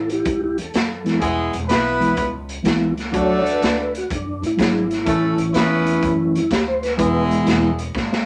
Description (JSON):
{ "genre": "electric blues shuffle", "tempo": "125 BPM", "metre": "4/4", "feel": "swing 67% on 8ths", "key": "A major", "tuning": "A4 = 440 Hz", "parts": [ { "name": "mellow tonewheel organ", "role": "accompaniment", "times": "0.0-7.7 s", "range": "E3 to C#5", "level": "-22 LUFS", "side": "equal", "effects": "slow rotary speaker, chorus vibrato" }, { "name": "upright bass", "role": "bass", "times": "0.0-8.2 s", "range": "E1 to A2", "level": "-32 LUFS", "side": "equal", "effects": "none" }, { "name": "raw garage drum kit", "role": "drums", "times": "0.1-8.3 s", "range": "hi-hat, kick drum, snare drum", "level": "-26 LUFS", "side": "equal", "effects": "none" }, { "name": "mellow horn section", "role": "stabs", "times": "1.2-7.8 s", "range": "G#3 to B4", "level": "-23 LUFS", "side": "equal", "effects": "none" } ], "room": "moderate studio reverb, RT60 0.6 s", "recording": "none", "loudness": "-20 LUFS", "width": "mono", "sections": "0.0-8.3 A section", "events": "drum fill 7.9-8.3", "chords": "0.0 A; 1.2 E; 3.1 D; 5.1 A; 7.0 E" }